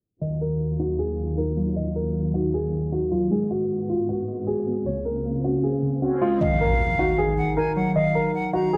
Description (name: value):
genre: hip hop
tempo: 155 BPM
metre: 4/4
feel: half-time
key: Eb minor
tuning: A4 = 440 Hz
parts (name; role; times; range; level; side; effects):
- warm concert grand piano; melody; 0.2-8.8 s; F4 to Eb5; -28 LUFS; equal; low-pass filter
- glassy digital keys; accompaniment; 0.2-8.8 s; Db3 to Gb4; -29 LUFS; equal; chorus, low-pass filter
- warm symphonic string section; sustained chords; 0.2-6.4 s; Db2 to Gb4; -33 LUFS; equal; none
- swell and impact; sound effects; 4.8-8.0 s; none; -32 LUFS; equal; none
- breathy silver concert flute; second line; 6.4-8.8 s; F5 to Bb5; -29 LUFS; equal; tape echo
room: light reverb, small room ambience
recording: dark, warm production, low-pass filter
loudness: -24 LUFS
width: mono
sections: 0.2-6.4 A section; 6.4-8.8 B section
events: filter sweep 0.2-6.4, 6.4-8.8; impact 6.4-8.0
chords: 0.2 Ebmadd9; 3.3 Abm7; 4.9 Db6; 6.4 Ebmadd9